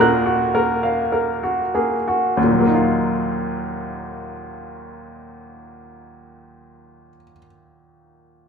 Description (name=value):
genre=neoclassical minimalist piano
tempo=50 BPM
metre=4/4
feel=rubato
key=Eb minor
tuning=A4 = 438 Hz
part: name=clear upright piano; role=solo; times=0.0-8.5 s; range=Eb2 to Gb6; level=-18 LUFS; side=equal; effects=none
room=wet recital hall reverb, RT60 1.6 s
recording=minimal, uncompressed stereo recording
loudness=-17 LUFS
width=side -6 dB against mid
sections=0.0-2.4 A section; 2.4-7.1 B section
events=slowing down 0.0-2.4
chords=0.0 Ebmadd9